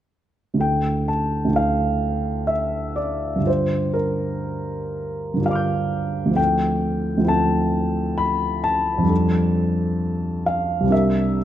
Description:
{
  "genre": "classical, impressionist solo piano",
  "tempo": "56-67 BPM",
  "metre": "3/4",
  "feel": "rubato",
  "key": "D minor",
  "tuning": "A4 = 438 Hz",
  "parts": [
    { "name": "warm concert grand piano", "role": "solo", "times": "0.5-11.4 s", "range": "C2 to G6", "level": "-19 LUFS", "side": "equal", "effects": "none" }
  ],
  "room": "moderate recital hall reverb, RT60 1.5 s",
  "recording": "close, detailed microphones",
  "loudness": "-19 LUFS",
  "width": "side -11 dB against mid",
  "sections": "0.6-11.4 A section",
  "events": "none",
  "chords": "0.6 Dmadd9; 3.5 Gm7; 6.4 Dm9; 9.1 F69; 10.9 C9"
}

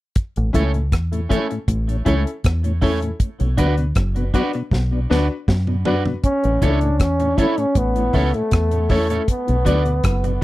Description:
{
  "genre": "roots reggae",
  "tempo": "79 BPM",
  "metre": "4/4",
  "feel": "straight",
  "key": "A major",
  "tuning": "A4 = 441 Hz",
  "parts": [
    { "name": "deep reggae drum kit", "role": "drums", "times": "0.2-10.4 s", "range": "hi-hat, kick drum, rim click, snare drum, toms", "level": "-20 LUFS", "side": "equal", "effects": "none" },
    { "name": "mellow tonewheel organ", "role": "accompaniment", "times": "0.4-10.4 s", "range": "A2 to D4", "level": "-27 LUFS", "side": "left 1 dB", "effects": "chorus vibrato, slow rotary speaker, tape echo" },
    { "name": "deep dub fingered electric bass", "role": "bass", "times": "0.4-10.4 s", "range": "F#1 to F#2", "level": "-20 LUFS", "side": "equal", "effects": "none" },
    { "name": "electric guitar at the edge of break-up", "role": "accompaniment", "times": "0.5-10.3 s", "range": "A3 to D5", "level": "-28 LUFS", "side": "right 6 dB", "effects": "tape echo" },
    { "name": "bright upright piano", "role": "stabs", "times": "0.5-10.4 s", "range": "C#4 to D5", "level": "-25 LUFS", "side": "left 4 dB", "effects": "none" },
    { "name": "breathy trombone", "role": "melody", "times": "6.2-10.4 s", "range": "A3 to E4", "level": "-20 LUFS", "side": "equal", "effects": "tape echo" }
  ],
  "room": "little or no reverb",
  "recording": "dry, close 1970s-style studio recording",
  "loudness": "-17 LUFS",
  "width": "side -17 dB against mid",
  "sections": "0.2-6.2 A section; 6.2-10.4 B section",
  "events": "drum fill 4.7-6.2",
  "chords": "0.2 A; 3.2 Bm; 6.2 A; 9.3 Bm"
}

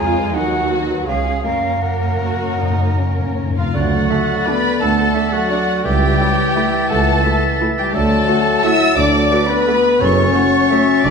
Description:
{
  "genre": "classical, orchestral ballroom waltz",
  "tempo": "149-188 BPM",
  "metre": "3/4",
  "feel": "rubato",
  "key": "F# major, D major from 3.7 s",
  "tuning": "A4 = 437 Hz",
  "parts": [
    { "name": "dark studio violin section", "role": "melody", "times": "0.0-11.1 s", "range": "A#4 to E6", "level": "-23 LUFS", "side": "left 2 dB", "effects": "none" },
    { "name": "rich studio violin section", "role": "second line", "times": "0.0-11.1 s", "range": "A#3 to E5", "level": "-23 LUFS", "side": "left 2 dB", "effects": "none" },
    { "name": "silver concert flute", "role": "second line", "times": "0.0-11.1 s", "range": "E#5 to A6", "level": "-22 LUFS", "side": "equal", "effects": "none" },
    { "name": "dark studio viola section", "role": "accompaniment", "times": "0.0-10.8 s", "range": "F#3 to F#4", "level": "-26 LUFS", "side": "right 2 dB", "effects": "none" },
    { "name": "warm studio cello section", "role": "bass", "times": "0.0-11.1 s", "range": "C#2 to A#4", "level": "-26 LUFS", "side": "right 2 dB", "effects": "none" },
    { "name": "warm studio double bass section", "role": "bass", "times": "0.0-11.1 s", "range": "F#1 to F#2", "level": "-22 LUFS", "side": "right 3 dB", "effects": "none" },
    { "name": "timpani", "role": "percussion", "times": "1.4-3.7, 10.0-10.5 s", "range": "F#2", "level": "-24 LUFS", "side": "left 2 dB", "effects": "none" },
    { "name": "warm oboe", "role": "second line", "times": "3.6-11.1 s", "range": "E#4 to E5", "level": "-24 LUFS", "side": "right 2 dB", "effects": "none" },
    { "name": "warm French horn section", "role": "sustained chords", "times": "3.6-11.1 s", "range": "E#3 to E4", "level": "-19 LUFS", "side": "left 4 dB", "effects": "none" },
    { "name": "clear clarinet", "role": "second line", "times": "3.7-11.1 s", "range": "A4 to F#5", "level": "-26 LUFS", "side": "left 2 dB", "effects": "none" },
    { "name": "mellow bassoon", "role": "accompaniment", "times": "3.7-11.1 s", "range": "D3 to F#3", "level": "-25 LUFS", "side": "right 1 dB", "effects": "none" },
    { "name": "mellow tuba", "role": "bass", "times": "3.7-11.1 s", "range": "F#1 to D2", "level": "-25 LUFS", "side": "right 4 dB", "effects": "none" }
  ],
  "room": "wet scoring stage reverb, RT60 2.0 s",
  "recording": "minimal, uncompressed stereo recording",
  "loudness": "-14 LUFS",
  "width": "side -5 dB against mid",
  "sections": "0.0-3.7 A section; 3.7-11.1 B section",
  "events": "timpani fill 1.4-3.7",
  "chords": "0.3 D#m; 1.1 C#; 1.4 F#; 3.7 D; 5.9 A7/C#; 7.9 D; 10.0 D/F# (rootless)"
}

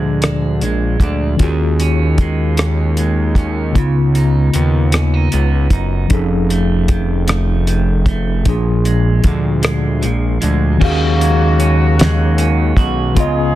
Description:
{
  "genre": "slow six-eight R&B",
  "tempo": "51 BPM (dotted quarters)",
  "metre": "6/8",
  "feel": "straight",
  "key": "Eb minor",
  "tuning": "A4 = 441 Hz",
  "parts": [
    { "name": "clean electric guitar", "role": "second line", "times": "0.0-13.6 s", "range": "F2 to Gb4", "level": "-22 LUFS", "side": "right 5 dB", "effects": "none" },
    { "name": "mellow tine electric piano", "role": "accompaniment", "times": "0.0-13.6 s", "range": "Bb2 to F5", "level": "-18 LUFS", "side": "left 1 dB", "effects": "medium stereo tremolo" },
    { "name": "fat analog bass", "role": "bass", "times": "0.0-13.6 s", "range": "F1 to Eb2", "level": "-16 LUFS", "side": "equal", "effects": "none" },
    { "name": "cloth-damped thuddy drum kit", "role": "drums", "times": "0.2-13.3 s", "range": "crash cymbal, hi-hat, kick drum, rim click, snare drum", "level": "-15 LUFS", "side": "equal", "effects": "soft clipping on snare" },
    { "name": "warm horn section", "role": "stabs", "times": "10.8-13.6 s", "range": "Db3 to Ab4", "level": "-22 LUFS", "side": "left 3 dB", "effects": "none" }
  ],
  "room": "light reverb",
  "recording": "dense, heavily limited modern master",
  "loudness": "-12 LUFS",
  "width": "side -14 dB against mid",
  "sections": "0.0-10.8 A section; 10.8-13.6 B section",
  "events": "kick muted 9.6-10.8",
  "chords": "0.0 Bb7; 1.4 Ebm11; 3.8 Db9; 6.1 F7alt; 8.5 Bb7; 10.8 Ebm11"
}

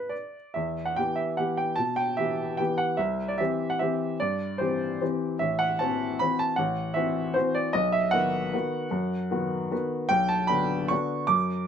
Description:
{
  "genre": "classical, piano waltz",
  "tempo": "151 BPM",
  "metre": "3/4",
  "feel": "uneven beats, rubato",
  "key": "E minor",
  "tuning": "A4 = 438 Hz",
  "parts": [
    { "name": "clear upright piano", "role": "solo", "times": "0.0-11.7 s", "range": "A1 to D6", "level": "-24 LUFS", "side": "equal", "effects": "none" }
  ],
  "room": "light reverb",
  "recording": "close, detailed microphones",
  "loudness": "-24 LUFS",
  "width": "side -8 dB against mid",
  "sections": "0.6-11.7 A section",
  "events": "none",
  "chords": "0.0 E5; 0.6 Em; 3.0 C; 5.4 F#m7b5/A; 7.8 B; 10.1 Bm"
}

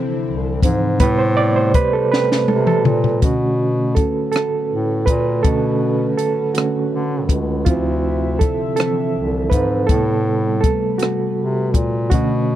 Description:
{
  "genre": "slow six-eight R&B",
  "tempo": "54 BPM (dotted quarters)",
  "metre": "6/8",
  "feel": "straight",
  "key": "B phrygian",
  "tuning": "A4 = 439 Hz",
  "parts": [
    { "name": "overdriven reed electric piano", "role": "accompaniment", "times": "0.0-12.6 s", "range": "C3 to D5", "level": "-19 LUFS", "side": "right 4 dB", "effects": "fast tremolo" },
    { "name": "chorused pulse-width pad", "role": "sustained chords", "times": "0.0-12.6 s", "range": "C3 to E5", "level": "-26 LUFS", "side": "left 5 dB", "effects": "none" },
    { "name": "warm bass clarinet", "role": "bass", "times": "0.3-12.6 s", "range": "C2 to D3", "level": "-20 LUFS", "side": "left 1 dB", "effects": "none" },
    { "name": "compact cocktail drum kit", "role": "drums", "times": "0.6-12.3 s", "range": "hi-hat, kick drum, rim click, snare drum, toms", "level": "-18 LUFS", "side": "left 2 dB", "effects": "none" }
  ],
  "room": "little or no reverb",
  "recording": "dry, close 1970s-style studio recording",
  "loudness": "-15 LUFS",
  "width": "side -12 dB against mid",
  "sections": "0.0-3.2 A section; 3.2-12.6 B section",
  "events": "reed electric piano solo 0.0-3.2, 3.2-12.6; drum fill 2.1-3.2",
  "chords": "0.0 Dm9; 1.0 Am9; 3.2 Bm9; 7.7 Dm9; 9.9 Am9"
}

